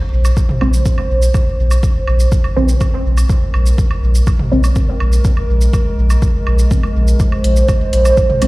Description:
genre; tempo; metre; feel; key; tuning
dub techno; 123 BPM; 4/4; straight; Bb minor; A4 = 445 Hz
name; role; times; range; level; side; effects
dark analog pad; sustained chords; 0.0-8.5 s; Ab3 to C5; -21 LUFS; right 2 dB; lush chorus, sidechain pumping
soft dub sub bass; bass; 0.1-8.5 s; Bb1; -12 LUFS; equal; sidechain pumping
electronic shaker and hi-hat; drums; 0.2-8.5 s; none; -31 LUFS; right 2 dB; dub echo
electronic woodblock and toms; percussion; 0.2-8.5 s; none; -27 LUFS; right 1 dB; sidechain pumping on perc, sidechain pumping on toms, dub echo
electronic kick drum; drums; 0.4-8.3 s; none; -14 LUFS; equal; none
filtered dub chord stab; stabs; 0.6-8.5 s; Db3 to C4; -20 LUFS; equal; phaser, sidechain pumping, dub echo
room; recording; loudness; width
digital ambience; played on a big sound system in a bare room, large studio reverb, vinyl crackle; -11 LUFS; side -21 dB against mid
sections
0.0-8.5 A section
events
filter sweep on synth stab 0.0-8.5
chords
0.0 Bbm9

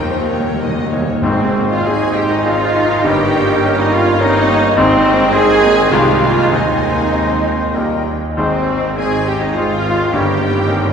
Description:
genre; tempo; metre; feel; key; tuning
classical, romantic movement for piano and orchestra; 95-110 BPM; 3/4; rubato; Ab major; A4 = 440 Hz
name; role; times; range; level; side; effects
clear concert grand piano; melody; 0.0-10.9 s; G1 to Bb4; -18 LUFS; left 2 dB; none
rich symphonic violin section; melody; 0.0-10.9 s; Db5 to Ab5; -31 LUFS; left 4 dB; none
rich symphonic violin section; second line; 0.0-10.9 s; C5 to Ab5; -24 LUFS; left 3 dB; none
bright symphonic viola section; accompaniment; 0.0-10.9 s; C4 to Bb4; -19 LUFS; right 2 dB; none
rich symphonic cello section; bass; 0.0-10.9 s; Eb2 to Eb4; -24 LUFS; right 3 dB; none
warm studio double bass section; bass; 0.0-10.9 s; G1 to Eb2; -25 LUFS; right 2 dB; none
warm tuba; bass; 0.0-10.9 s; G1 to Eb2; -26 LUFS; right 2 dB; none
timpani; percussion; 0.0-7.4 s; Ab2 to Eb3; -26 LUFS; equal; none
clear clarinet; second line; 1.2-10.9 s; C4 to Ab4; -22 LUFS; equal; none
mellow hollow flute section; second line; 1.2-10.4 s; Eb5; -25 LUFS; right 2 dB; none
warm oboe; second line; 1.2-10.3 s; Bb4 to Db5; -25 LUFS; right 1 dB; none
warm bassoon; accompaniment; 1.2-10.3 s; G3 to Ab3; -26 LUFS; right 2 dB; none
mellow French horn section; sustained chords; 1.2-10.9 s; Bb3 to Eb4; -24 LUFS; left 2 dB; none
warm trombone section; sustained chords; 1.2-10.9 s; Eb3 to Bb3; -23 LUFS; right 2 dB; none
room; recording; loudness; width
wet cathedral reverb, RT60 5.1 s; recorded in a church or concert hall; -12 LUFS; side -7 dB against mid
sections
0.0-1.2 A section; 1.2-10.9 B section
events
timpani fill 0.0-1.2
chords
0.0 Eb; 1.2 Ab; 3.0 Eb7/G; 4.8 Ab; 5.9 Ab/C; 6.5 Ab/Eb; 7.8 Eb; 8.4 Ab; 10.1 Eb7/G

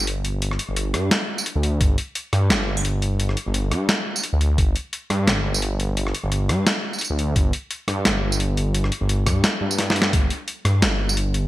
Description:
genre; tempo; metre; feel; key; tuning
half-time drum and bass; 173 BPM; 4/4; swing 55% on 16ths, half-time; unclear; A4 = 439 Hz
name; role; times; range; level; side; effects
dark detuned saw bass; bass; 0.0-11.5 s; G1 to G2; -21 LUFS; equal; none
boom bap sampler-style drum kit; drums; 0.1-11.4 s; hi-hat, rim click, snare drum, tambourine; -22 LUFS; equal; studio reverb, gated reverb
electronic kick drum; drums; 1.8-1.9, 4.6-4.7, 7.4-10.2 s; none; -20 LUFS; equal; studio reverb
room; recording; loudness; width
light reverb, digital ambience; bright 1980s-style digital production; -19 LUFS; side -16 dB against mid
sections
0.0-11.5 A section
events
drum fill 9.8-10.1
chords
none

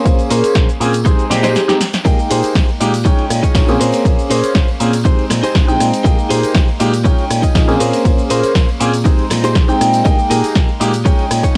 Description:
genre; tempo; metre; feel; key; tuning
filtered disco house; 120 BPM; 4/4; straight; Bb dorian; A4 = 441 Hz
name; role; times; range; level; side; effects
bright concert grand piano; accompaniment; 0.0-11.6 s; Ab3 to G5; -19 LUFS; equal; phaser, vintage 12-bit sampler grit, sidechain pumping, cassette tape
direct-recorded clean electric guitar; riff; 0.0-11.6 s; Db4 to Eb5; -22 LUFS; equal; sidechain pumping, cassette tape
fingered electric bass; bass; 0.1-11.5 s; Bb1 to Bb2; -22 LUFS; equal; sidechain pumping
electronic kick drum; drums; 0.1-11.5 s; none; -15 LUFS; equal; cassette tape
punchy analog drum machine; drums; 0.1-11.6 s; hi-hat, ride cymbal, rim click, shaker, snare drum; -24 LUFS; equal; sidechain pumping on hats, cassette tape, sidechain pumping on perc, sidechain pumping on cymbals
tambourine; percussion; 0.1-11.5 s; none; -38 LUFS; equal; sidechain pumping on perc
room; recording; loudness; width
light reverb; home recording on cassette; -14 LUFS; mono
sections
0.0-11.6 A section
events
drum fill 1.3-2.1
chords
0.0 Bbm9; 1.1 Bb13sus4; 3.1 Eb9sus4/Bb; 3.8 Bbm9; 5.1 Bb13sus4; 7.1 Eb9sus4/Bb; 7.8 Bbm9; 9.1 Abmaj7/Bb; 10.1 Ebadd11/Bb; 11.1 Eb9sus4/Bb

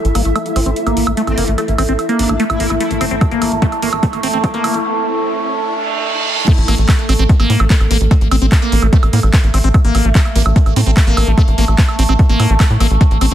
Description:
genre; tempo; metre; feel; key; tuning
psychedelic trance; 147 BPM; 4/4; straight; A phrygian; A4 = 441 Hz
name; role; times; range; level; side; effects
overtone-sweeping drone; sustained chords; 0.5-13.3 s; A3; -22 LUFS; right 2 dB; chorus, built-in reverb, sidechain pumping
tight sequencer bass; bass; 0.0-13.3 s; G1 to A2; -14 LUFS; equal; none
techno drum kit; drums; 0.0-13.3 s; crash cymbal, handclaps, hi-hat, woodblock; -22 LUFS; right 3 dB; none
riser and reverse cymbal; sound effects; 2.0-6.5 s; none; -25 LUFS; right 2 dB; none
granular cloud pad; texture; 0.0-4.8 s; E4 to E5; -23 LUFS; left 1 dB; built-in reverb, sidechain pumping
liquid acid bass; riff; 0.2-13.3 s; A3 to C4; -19 LUFS; moving between left 5 dB and right 5 dB; phaser, auto-pan, sidechain pumping, digital delay
metallic wobble bass; second line; 1.3-2.9 s; C4 to E4; -26 LUFS; left 4 dB; chorus, sidechain pumping, high-pass filter, digital delay
electronic kick drum; drums; 3.2-13.1 s; none; -11 LUFS; equal; none
room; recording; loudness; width
light reverb; dense, heavily limited modern master, high-pass filter; -11 LUFS; side -11 dB against mid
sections
0.0-6.5 A section; 6.5-13.3 B section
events
build-up 0.0-6.5; filter sweep on acid bass 0.0-6.5; filter sweep 0.0-6.5; riser 2.0-6.5; drum fill 3.2-4.8; reverse cymbal 5.7-6.5; drop 6.5-13.3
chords
0.0 A5

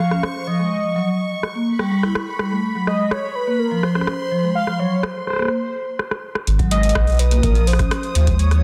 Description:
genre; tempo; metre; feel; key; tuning
IDM; 125 BPM; 4/4; straight; unclear; A4 = 439 Hz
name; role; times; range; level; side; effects
warm velvety synth lead; melody; 0.0-8.6 s; Bb4 to E#5; -26 LUFS; equal; chorus, digital delay
vibraphone with soft mallets; arpeggios; 0.0-8.6 s; E#3 to E4; -24 LUFS; equal; vintage 12-bit sampler grit, digital delay
bubbling stepped-filter texture; texture; 0.0-8.6 s; B5 to D#6; -34 LUFS; equal; chorus, built-in reverb
electro analog drum machine; drums; 0.1-8.6 s; hi-hat, rim click; -28 LUFS; equal; soft clipping on snare, low-pass filter on snare, low-pass filter on hats
round analog bass; bass; 6.5-8.6 s; G#1 to D#2; -18 LUFS; equal; tube saturation
electronic kick drum; drums; 6.6-8.4 s; none; -24 LUFS; equal; none
room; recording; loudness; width
light reverb; dense, heavily limited modern master; -20 LUFS; mono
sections
0.0-6.5 A section; 6.5-8.6 B section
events
break 5.5-6.5; drum fill 6.0-6.5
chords
0.0 C#maj9/E#; 0.7 D#7(no3); 1.7 N.C.; 2.6 G#m (rootless); 3.6 Fsus4; 4.6 F#maj7(no3)/E# (rootless); 5.5 N.C.; 6.5 G#m; 7.4 A#sus2

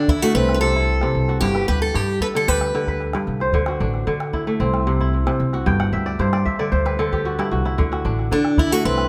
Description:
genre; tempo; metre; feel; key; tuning
west african traditional, West African string and xylophone music; 113 BPM; 4/4; straight; G major; A4 = 439 Hz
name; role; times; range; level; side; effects
picked steel-string acoustic guitar; melody; 0.0-3.0, 8.3-9.1 s; D4 to B4; -24 LUFS; equal; none
kora; arpeggios; 0.0-9.1 s; G2 to G5; -24 LUFS; equal; tape echo
upright bass; bass; 0.0-9.1 s; G1 to D3; -25 LUFS; equal; none
calabash; percussion; 0.1-9.1 s; none; -28 LUFS; equal; none
room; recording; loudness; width
light reverb; none; -20 LUFS; mono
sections
0.0-9.1 A section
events
kora fill 5.7-7.8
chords
0.4 C; 1.4 G; 3.5 D; 4.6 C; 5.7 G5; 7.8 D

